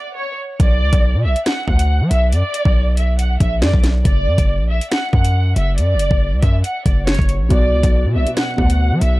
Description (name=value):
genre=hip hop, drill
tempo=139 BPM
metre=4/4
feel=half-time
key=B harmonic minor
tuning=A4 = 440 Hz
part: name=warm studio violin section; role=melody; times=0.0-9.2 s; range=C#5 to F#5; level=-22 LUFS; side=equal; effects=low-pass filter, digital delay
part: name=hard-hitting 808-style bass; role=bass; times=0.6-9.2 s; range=F#1 to F#3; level=-16 LUFS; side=equal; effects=none
part: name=drill drum kit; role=drums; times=0.6-9.1 s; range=finger snaps, hi-hat, kick drum, snare drum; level=-17 LUFS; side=equal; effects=none
part: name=dark grand piano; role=accompaniment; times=7.5-9.2 s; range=B2 to D5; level=-22 LUFS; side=equal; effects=low-pass filter
room=little or no reverb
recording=dark, warm production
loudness=-14 LUFS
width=side -19 dB against mid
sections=0.0-9.2 A section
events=break 0.0-0.6; drums muted 0.2-0.6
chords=0.0 N.C.; 0.6 Bm; 4.1 N.C.; 7.5 Bm